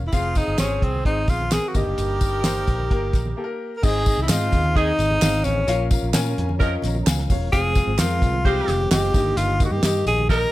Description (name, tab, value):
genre	uptempo 1960s-style soul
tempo	130 BPM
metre	4/4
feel	straight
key	Ab major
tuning	A4 = 440 Hz
part	vintage muted fingered electric bass	bass	0.0-10.4 s	Fb1 to Bb2	-24 LUFS	equal	none
part	breathy tenor saxophone	melody	0.1-10.5 s	C4 to Bb4	-23 LUFS	equal	none
part	warm saxophone section	second line	0.1-10.4 s	Eb3 to C5	-30 LUFS	right 4 dB	none
part	clear upright piano	accompaniment	0.1-10.5 s	G2 to Ab5	-29 LUFS	left 4 dB	none
part	cloth-damped thuddy drum kit	drums	0.1-10.4 s	crash cymbal, hi-hat, kick drum, snare drum	-21 LUFS	equal	none
part	congas	percussion	0.1-10.3 s	none	-35 LUFS	right 3 dB	none
part	tambourine and handclaps	percussion	0.1-10.4 s	none	-32 LUFS	left 1 dB	none
part	percussive tonewheel organ	sustained chords	3.8-10.5 s	Eb3 to Bb4	-32 LUFS	right 2 dB	fast rotary speaker, chorus vibrato
room	little or no reverb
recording	none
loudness	-18 LUFS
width	side -16 dB against mid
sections	0.0-3.8 A section; 3.8-10.5 B section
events	break 3.4-3.8; drum fill 10.3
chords	0.1 Fm; 1.8 Eb; 3.8 Ab; 5.7 Bbm; 7.5 Fm; 9.1 Eb/G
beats	| 0.13 0.59 1.06 1.52 | 1.98 2.45 2.91 3.37 | 3.83 4.30 4.76 5.22 | 5.68 6.14 6.61 7.07 | 7.53 7.99 8.45 8.91 | 9.37 9.83 10.29